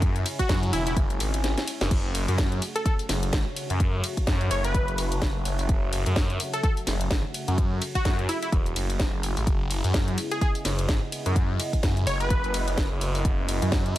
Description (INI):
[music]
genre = bass house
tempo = 127 BPM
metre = 4/4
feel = swing 58% on 16ths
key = F# minor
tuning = A4 = 440 Hz
[part]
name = sweeping resonant pad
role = sustained chords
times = 0.0-14.0 s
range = C#3 to F#4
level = -35 LUFS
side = equal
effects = chorus, phaser, sidechain pumping
[part]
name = phased detuned saw bass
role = bass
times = 0.0-13.9 s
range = E1 to F#2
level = -26 LUFS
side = equal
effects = phaser, tube saturation, sidechain pumping
[part]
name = electronic kick drum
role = drums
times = 0.0-13.8 s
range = none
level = -25 LUFS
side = equal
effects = none
[part]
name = house drum kit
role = drums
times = 0.0-14.0 s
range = crash cymbal, hi-hat, ride cymbal, snare drum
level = -31 LUFS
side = equal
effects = none
[part]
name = plucky unison lead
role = melody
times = 0.4-12.9 s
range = E4 to C#5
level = -32 LUFS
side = equal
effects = digital delay
[sound]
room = little or no reverb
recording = none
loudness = -23 LUFS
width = side -14 dB against mid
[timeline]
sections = 0.0-14.0 A section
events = kick drops out 1.4-1.9; drum fill 1.4-1.9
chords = 0.0 C#m/F#; 1.9 F#m; 9.5 C#m7/F#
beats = | 0.02 0.49 0.96 1.44 | 1.91 2.38 2.85 3.33 | 3.80 4.27 4.75 5.22 | 5.69 6.16 6.63 7.11 | 7.58 8.05 8.52 9.00 | 9.47 9.94 10.41 10.89 | 11.36 11.83 12.30 12.78 | 13.25 13.72